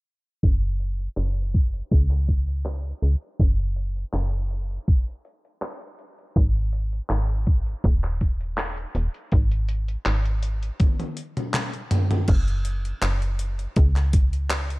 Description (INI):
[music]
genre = vaporwave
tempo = 81 BPM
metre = 4/4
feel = swing 54% on 16ths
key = unclear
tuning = A4 = 440 Hz
[part]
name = slap-like FM bass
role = bass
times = 0.4-14.8 s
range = D#1 to C#2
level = -24 LUFS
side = equal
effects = none
[part]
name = electronic kick drum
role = drums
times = 0.4-14.3 s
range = none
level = -20 LUFS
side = equal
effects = none
[part]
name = gated 80s digital drum machine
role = drums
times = 0.4-14.8 s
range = crash cymbal, handclaps, hi-hat, toms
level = -28 LUFS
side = equal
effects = gated reverb, overdrive, low-pass filter on hats, low-pass filter on snare, low-pass filter on toms, low-pass filter on cymbals, low-pass filter on room
[sound]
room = little or no reverb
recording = low-pass filter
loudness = -21 LUFS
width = side -23 dB against mid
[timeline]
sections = 0.4-12.3 A section; 12.3-14.8 B section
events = filter sweep on drum 0.4-12.3; filter sweep 0.4-12.3; drum fill 10.8-12.3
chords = none